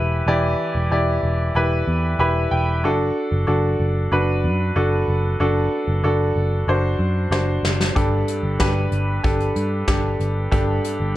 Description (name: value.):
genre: piano-driven pop.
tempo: 94 BPM.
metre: 4/4.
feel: straight.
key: unclear.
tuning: A4 = 440 Hz.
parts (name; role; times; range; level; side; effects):
clear concert grand piano; accompaniment; 0.0-11.2 s; G2 to B5; -21 LUFS; equal; none.
vintage muted picked electric bass; bass; 0.0-11.1 s; E1 to G2; -21 LUFS; equal; none.
soft brush drum kit; drums; 7.3-11.0 s; hi-hat, kick drum, snare drum; -22 LUFS; equal; none.
room: light reverb, small room ambience.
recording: dark, warm production.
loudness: -18 LUFS.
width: side -15 dB against mid.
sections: 0.0-11.2 A section.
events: grand piano fill 1.9-2.8; drum fill 7.3-8.0.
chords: 0.0 Em; 2.8 D/F#; 8.0 Gsus2.